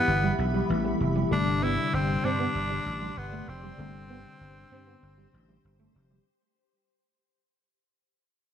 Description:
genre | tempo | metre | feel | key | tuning
pop | 97 BPM | 4/4 | straight | G major | A4 = 440 Hz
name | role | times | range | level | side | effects
raspy tenor saxophone | melody | 0.0-5.6 s | B3 to E4 | -30 LUFS | equal | none
bright tine electric piano | accompaniment | 0.0-6.3 s | C3 to E4 | -32 LUFS | left 5 dB | lush chorus
glassy FM pad | sustained chords | 0.0-6.2 s | G4 to C6 | -36 LUFS | left 2 dB | ensemble chorus, built-in reverb
electric guitar at the edge of break-up | riff | 0.0-6.2 s | G3 to C4 | -34 LUFS | right 4 dB | ensemble chorus
vintage slap bass | bass | 0.1-6.2 s | F1 to G2 | -30 LUFS | right 1 dB | none
room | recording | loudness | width
moderate lush hall reverb, RT60 2.7 s | none | -24 LUFS | side -9 dB against mid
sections
0.0-6.3 A section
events
fade-out 0.0-6.3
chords
0.0 Em; 1.3 Gsus4

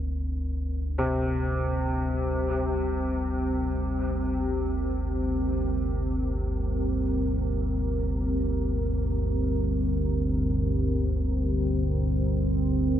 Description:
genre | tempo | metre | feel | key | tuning
dark ambient drone | free time | none | none | G minor | A4 = 439 Hz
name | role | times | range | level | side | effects
deep dark ambient pad | sustained chords | 0.0-13.0 s | C4 to Bb4 | -30 LUFS | equal | chorus, built-in reverb
deep rumbling drone | drone | 0.0-13.0 s | G1 to D2 | -27 LUFS | equal | built-in reverb, lush chorus
warm concert grand piano | arpeggios | 1.0-13.0 s | C3 | -32 LUFS | equal | diffuse ambient delay
room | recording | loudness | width
moderate huge ambient reverb, RT60 9.0 s | none | -25 LUFS | side -10 dB against mid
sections
0.0-13.0 A section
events
none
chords
0.0 Gm

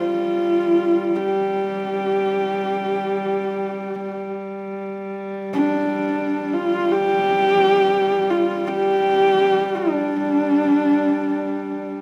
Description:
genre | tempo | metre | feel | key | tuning
mongolian traditional, Mongolian folk | free time | none | none | unclear | A4 = 439 Hz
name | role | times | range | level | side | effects
dark horsehead fiddle | melody | 0.0-11.9 s | D4 to G4 | -21 LUFS | equal | none
clear horsehead fiddle | drone | 0.0-12.0 s | G3 | -29 LUFS | equal | none
room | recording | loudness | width
moderate recital hall reverb, RT60 1.3 s | none | -20 LUFS | mono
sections
0.0-12.0 A section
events
none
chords
none

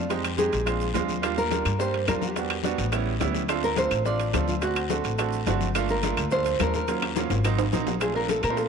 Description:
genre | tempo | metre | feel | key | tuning
Afro-Cuban jazz | 212 BPM | 4/4 | straight | unclear | A4 = 440 Hz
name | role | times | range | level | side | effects
nylon-string guitar | melody | 0.0-8.7 s | F4 to D5 | -28 LUFS | equal | slapback echo
clear grand piano | accompaniment | 0.0-8.7 s | Gb3 to G4 | -29 LUFS | right 12 dB | none
upright bass | bass | 0.0-8.7 s | G1 to Bb2 | -29 LUFS | left 2 dB | none
bongos | percussion | 0.1-8.7 s | none | -36 LUFS | left 15 dB | none
congas | percussion | 0.1-8.7 s | none | -34 LUFS | left 16 dB | none
guiro | percussion | 0.1-8.7 s | none | -38 LUFS | left 15 dB | none
maracas | percussion | 0.1-8.7 s | none | -46 LUFS | right 16 dB | none
timbales | percussion | 0.1-8.6 s | none | -34 LUFS | right 12 dB | none
claves | percussion | 0.2-8.6 s | none | -36 LUFS | left 18 dB | none
room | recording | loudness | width
light reverb, small room reverb | 1960s-style stereo with parts hard left and right | -23 LUFS | side -6 dB against mid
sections
0.0-8.0 A section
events
drum fill 6.9-8.0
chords
0.1 Fm7; 0.7 Bb7; 1.2 Ebmaj7; 2.4 Em7; 2.9 A7; 3.5 Dm7; 4.6 D7; 5.8 Gm7; 6.9 Ebm7; 7.4 Ab9; 8.0 Bbmaj9

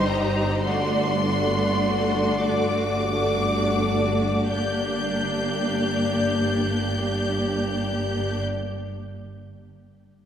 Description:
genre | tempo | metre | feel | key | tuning
classical, slow romantic movement for string orchestra | 27-36 BPM (dotted quarters) | 6/8 | rubato | G minor | A4 = 440 Hz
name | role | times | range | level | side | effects
rich studio violin section | melody | 0.0-8.4 s | Bb5 to G6 | -29 LUFS | left 2 dB | none
clear studio violin section | second line | 0.0-8.4 s | F#4 to D5 | -27 LUFS | left 3 dB | none
rich studio viola section | accompaniment | 0.0-8.4 s | G3 to Eb4 | -26 LUFS | equal | none
clear studio cello section | bass | 0.0-8.4 s | G2 | -30 LUFS | right 2 dB | none
rich studio double bass section | bass | 0.0-8.4 s | G1 | -30 LUFS | right 2 dB | none
room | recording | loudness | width
wet church reverb, RT60 2.7 s | recorded in a church or concert hall | -21 LUFS | side -9 dB against mid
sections
0.0-4.5 A section; 4.5-8.3 B section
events
slowing down 0.0-4.5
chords
0.0 Cm/G; 0.6 D7/G; 4.5 Gm

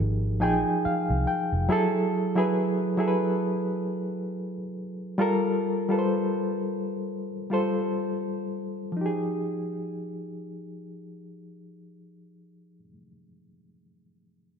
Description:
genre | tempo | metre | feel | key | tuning
R&B | 60-70 BPM | 4/4 | swing 56% on 16ths | unclear | A4 = 438 Hz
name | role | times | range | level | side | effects
reed electric piano | accompaniment | 0.0-14.6 s | F3 to Ab5 | -26 LUFS | equal | fast tremolo
vintage muted fingered electric bass | bass | 0.0-1.7 s | F1 to C2 | -26 LUFS | equal | none
room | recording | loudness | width
moderate plate reverb, RT60 2.4 s | bright 1980s-style digital production | -25 LUFS | side -7 dB against mid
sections
0.0-9.0 A section; 9.0-13.0 B section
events
reed electric piano fill 0.0-1.7; slowing down 1.7-9.0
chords
0.0 Fm9; 1.7 Gbm9; 5.2 Gm9; 9.0 Fm9

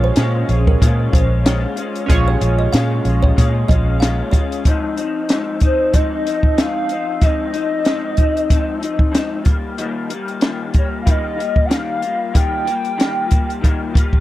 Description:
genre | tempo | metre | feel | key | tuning
indie pop, bedroom pop | 94 BPM | 4/4 | swing 55% on 16ths | Ab major | A4 = 441 Hz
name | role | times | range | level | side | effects
kalimba | second line | 0.0-4.5 s | Bb4 to F5 | -27 LUFS | right 3 dB | analog chorus, tape echo
chorused retro synth keys | accompaniment | 0.0-4.7 s | Db4 to Db5 | -25 LUFS | right 5 dB | cassette tape
electric guitar through a small old amp | accompaniment | 0.0-14.2 s | Ab2 to F4 | -22 LUFS | left 4 dB | ensemble chorus, vibrato effect
vintage muted fingered electric bass | bass | 0.0-4.2 s | Bb1 to Bb2 | -16 LUFS | equal | none
compact cocktail drum kit | drums | 0.2-14.2 s | hi-hat, kick drum, snare drum | -15 LUFS | equal | none
hollow clarinet-like synth lead | melody | 5.6-14.2 s | C5 to G5 | -21 LUFS | equal | wide subtle chorus
room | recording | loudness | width
little or no reverb | dry, close 1970s-style studio recording | -15 LUFS | side -15 dB against mid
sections
0.0-4.7 A section; 4.7-14.2 B section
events
none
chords
0.0 Bbm7; 4.7 Ab6; 9.5 Ebadd9

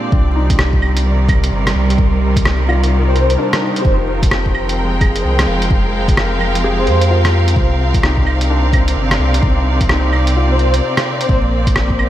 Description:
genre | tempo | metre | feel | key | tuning
future garage | 129 BPM | 4/4 | swing 63% on 16ths | unclear | A4 = 439 Hz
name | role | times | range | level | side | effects
felt-muted upright piano | accompaniment | 0.0-11.5 s | C4 to C5 | -23 LUFS | left 3 dB | sidechain pumping, diffuse ambient delay
bright symphonic string section | sustained chords | 0.0-12.1 s | Bb2 to G5 | -19 LUFS | right 1 dB | vintage 12-bit sampler grit, sidechain pumping
warm sub bass | bass | 0.1-12.1 s | F1 to F2 | -16 LUFS | equal | none
electronic kick drum | drums | 0.1-12.0 s | none | -16 LUFS | equal | studio reverb
lo-fi sampler-style drum kit | drums | 0.5-12.1 s | claves, hi-hat, rim click | -20 LUFS | right 1 dB | studio reverb
breathy flute-like synth lead | melody | 3.1-3.9, 6.8-7.0, 10.5-11.4 s | C5 | -22 LUFS | equal | ensemble chorus, diffuse ambient delay
room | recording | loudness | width
moderate lush hall reverb, RT60 2.2 s | dreamy mix soaked in reverb, vinyl crackle | -12 LUFS | side -12 dB against mid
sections
0.1-12.1 A section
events
none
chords
0.1 Cm7; 3.8 Fm11; 7.6 Cm7; 11.3 Bbadd9

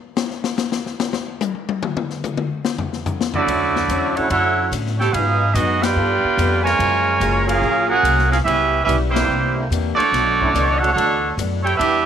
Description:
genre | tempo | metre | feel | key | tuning
jazz, big band swing | 144 BPM | 4/4 | swing 67% on 8ths | D major | A4 = 436 Hz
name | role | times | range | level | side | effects
swinging big-band drum kit | drums | 0.2-11.9 s | hi-hat, kick drum, ride cymbal, snare drum, toms | -25 LUFS | left 6 dB | none
clear trumpet section | melody | 3.3-12.1 s | A3 to G#5 | -18 LUFS | right 2 dB | none
warm trombone section | second line | 3.3-12.1 s | C#3 to G4 | -25 LUFS | right 13 dB | none
picked acoustic archtop guitar | accompaniment | 3.5-12.1 s | G#2 to A4 | -28 LUFS | left 12 dB | none
upright bass | bass | 3.5-12.1 s | F#1 to A2 | -22 LUFS | equal | none
warm trombone section | sustained chords | 4.2-10.9 s | D3 to A4 | -28 LUFS | equal | none
room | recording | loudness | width
light reverb, small room ambience | 1960s-style stereo with parts hard left and right | -16 LUFS | side -8 dB against mid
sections
0.0-3.5 A section; 3.5-12.1 B section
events
drum solo 0.0-3.5; band accent 5.8, 9.1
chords
0.0 N.C.; 3.5 Dmaj9; 5.1 G#m7; 6.0 G9; 6.8 F#maj9; 8.5 C#m7b5; 9.3 C9; 10.1 Bm11

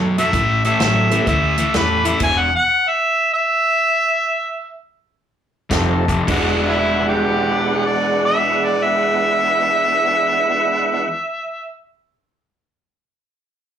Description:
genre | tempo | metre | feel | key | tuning
electric blues shuffle | 102-128 BPM | 4/4 | swing 66% on 8ths | E mixolydian | A4 = 441 Hz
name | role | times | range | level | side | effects
overdriven semi-hollow guitar | riff | 0.0-2.5, 5.7-11.1 s | E2 to F#4 | -22 LUFS | left 3 dB | slapback echo
mellow horn section | stabs | 0.0-2.2, 5.7-11.0 s | G#3 to F#5 | -25 LUFS | equal | slapback echo
vintage muted fingered electric bass | bass | 0.0-2.5, 5.7-11.0 s | E1 to F#2 | -23 LUFS | equal | none
mellow harmonica | melody | 0.2-11.7 s | E4 to G#5 | -17 LUFS | equal | overdrive, slapback echo
natural country drum kit | drums | 0.2-2.4, 5.7-6.5 s | crash cymbal, hi-hat, kick drum, snare drum | -24 LUFS | right 1 dB | none
tonewheel organ | accompaniment | 1.1-1.3, 5.7-11.1 s | G#3 to F#5 | -23 LUFS | right 5 dB | slow rotary speaker, overdrive, chorus vibrato, slapback echo
room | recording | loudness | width
light reverb | live gig heard through the venue's PA, club reverb | -15 LUFS | side -9 dB against mid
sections
0.0-6.3 A section; 6.3-11.0 B section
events
slowing down 2.2-6.3; stop 2.2-5.7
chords
0.3 A7; 2.2 E5; 5.7 F9; 6.3 E9

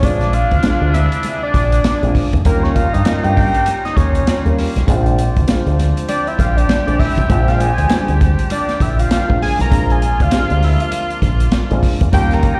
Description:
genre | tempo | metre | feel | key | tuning
funk | 99 BPM | 4/4 | swing 60% on 16ths | Bb mixolydian | A4 = 437 Hz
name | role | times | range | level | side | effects
fat analog lead | melody | 0.0-12.6 s | Bb4 to Bb5 | -22 LUFS | equal | chorus, plate reverb
raspy baritone saxophone | second line | 0.0-12.6 s | D4 to G4 | -29 LUFS | equal | slapback echo
overdriven tonewheel organ | sustained chords | 0.0-12.6 s | C3 to Ab4 | -32 LUFS | equal | slow rotary speaker, plate reverb
dark upright piano | stabs | 0.0-12.4 s | G3 to Ab4 | -25 LUFS | equal | plate reverb
fingered electric bass with an envelope filter | bass | 0.0-12.5 s | Bb1 to G2 | -18 LUFS | equal | none
vintage drum kit | drums | 0.0-12.6 s | hi-hat, kick drum, snare drum | -20 LUFS | equal | none
congas | percussion | 0.0-12.6 s | none | -29 LUFS | equal | none
room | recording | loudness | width
light reverb | live gig heard through the venue's PA, recital hall reverb | -15 LUFS | mono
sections
0.0-12.6 A section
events
analog synth lead solo 0.0-12.6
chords
0.0 Bb9; 2.5 Eb9; 4.9 Bb9

